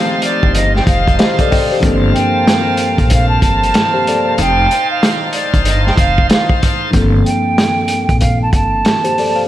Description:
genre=hip hop, boom-bap hip-hop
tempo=94 BPM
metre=4/4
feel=swing 63% on 16ths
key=G minor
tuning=A4 = 440 Hz
part: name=hollow concert flute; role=melody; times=0.0-9.5 s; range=D5 to A5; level=-17 LUFS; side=right 2 dB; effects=high-pass filter, low-pass filter, analog delay
part: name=tine electric piano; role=accompaniment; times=0.0-9.5 s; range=G2 to G5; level=-17 LUFS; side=left 2 dB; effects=cassette tape, high-pass filter, low-pass filter
part: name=bright tonewheel organ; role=sustained chords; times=0.0-6.9 s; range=Bb3 to A5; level=-20 LUFS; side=right 1 dB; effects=overdrive, slow rotary speaker, high-pass filter, low-pass filter
part: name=vintage drum kit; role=drums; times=0.2-9.4 s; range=hi-hat, kick drum, snare drum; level=-15 LUFS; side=equal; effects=vintage 12-bit sampler grit
part: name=upright bass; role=bass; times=0.4-8.8 s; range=F1 to Bb1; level=-16 LUFS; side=equal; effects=none
room=moderate lush hall reverb, RT60 2.7 s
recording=dreamy mix soaked in reverb, vinyl crackle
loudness=-11 LUFS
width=side -13 dB against mid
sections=0.0-6.9 A section; 6.9-9.5 B section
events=none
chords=0.0 F7; 1.8 Gm11; 4.4 F7; 6.9 Gm11

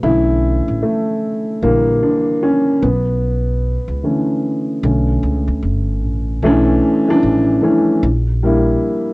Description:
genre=lo-fi hip hop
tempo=75 BPM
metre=4/4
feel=swing 63% on 16ths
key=B minor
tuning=A4 = 440 Hz
part: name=dark upright piano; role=accompaniment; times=0.0-9.1 s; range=D3 to E4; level=-15 LUFS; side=equal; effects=none
part: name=upright bass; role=bass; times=0.0-8.7 s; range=G1 to D2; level=-18 LUFS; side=equal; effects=none
room=moderate studio reverb, RT60 0.6 s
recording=worn, warbling old tape, cassette tape, warbly pitch drift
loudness=-13 LUFS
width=side -24 dB against mid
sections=0.0-6.4 A section; 6.4-9.1 B section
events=upright piano solo 0.0-6.4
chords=0.0 Bm11; 1.6 Gm6/Bb; 2.8 Bm11; 4.8 Bm7; 6.4 Bm11; 8.0 Gm6/Bb

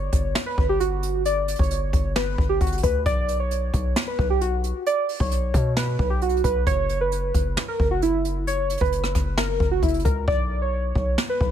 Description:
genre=hip hop, trap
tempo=133 BPM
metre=4/4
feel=half-time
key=B harmonic minor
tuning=A4 = 438 Hz
part: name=warbly lo-fi synth keys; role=melody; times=0.0-11.5 s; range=E4 to D5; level=-24 LUFS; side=right 1 dB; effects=chorus, ping-pong delay
part: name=hard-hitting 808-style bass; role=bass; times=0.0-11.5 s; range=F#1 to B2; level=-26 LUFS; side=equal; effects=none
part: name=jazz brush drum kit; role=drums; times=0.1-11.5 s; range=hi-hat, kick drum, rim click, snare drum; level=-24 LUFS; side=equal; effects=none
room=studio reverb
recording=none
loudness=-20 LUFS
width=side -10 dB against mid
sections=0.0-11.5 A section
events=hi-hats muted 10.3-11.5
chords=0.0 G5; 3.1 Bsus2; 6.7 F#5; 10.3 Bsus2

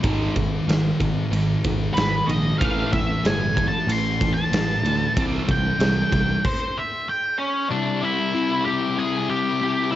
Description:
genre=quiet-loud alternative rock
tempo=94 BPM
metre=4/4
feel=straight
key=unclear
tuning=A4 = 440 Hz
part: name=distorted electric guitar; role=riff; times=0.0-6.4 s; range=Ab2 to C4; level=-27 LUFS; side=right 6 dB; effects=distortion
part: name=thick fuzz guitar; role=riff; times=0.0-10.0 s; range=Ab2 to E4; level=-25 LUFS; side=left 5 dB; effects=distortion
part: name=growling fingered electric bass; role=bass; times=0.0-6.3 s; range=G1 to D2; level=-26 LUFS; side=right 1 dB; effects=overdrive
part: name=big rock drum kit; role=drums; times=0.0-6.6 s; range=crash cymbal, kick drum, ride cymbal, snare drum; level=-25 LUFS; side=right 1 dB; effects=cassette tape
part: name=octave-fuzz lead guitar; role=melody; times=1.9-10.0 s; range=Db4 to C6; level=-24 LUFS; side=equal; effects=distortion
room=light reverb, small room ambience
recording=home recording on cassette, nothing above 7.7 kHz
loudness=-20 LUFS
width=side -13 dB against mid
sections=0.0-7.7 A section; 7.7-10.0 B section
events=lead electric guitar solo 0.0-7.7; stop 6.4-7.7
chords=0.0 Ab5; 2.6 A5; 5.2 C

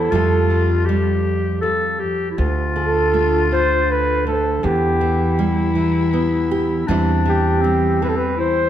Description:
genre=acoustic folk-pop ballad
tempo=80 BPM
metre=3/4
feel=straight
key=D dorian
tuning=A4 = 440 Hz
part: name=mellow flugelhorn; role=melody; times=0.0-8.7 s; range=G4 to C5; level=-20 LUFS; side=right 1 dB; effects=tape echo
part: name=growling clarinet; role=second line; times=0.0-8.7 s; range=C4 to A4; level=-22 LUFS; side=left 4 dB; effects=none
part: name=nylon-string guitar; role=accompaniment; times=0.0-8.7 s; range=D2 to G4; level=-23 LUFS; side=right 4 dB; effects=none
part: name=upright bass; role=bass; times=0.0-8.7 s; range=D2 to F2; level=-21 LUFS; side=equal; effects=none
room=moderate concert hall reverb, RT60 2.1 s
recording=none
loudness=-16 LUFS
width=side -10 dB against mid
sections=0.0-8.7 A section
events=none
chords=0.1 Fadd9; 2.4 Dm; 4.6 Em; 6.9 C/E

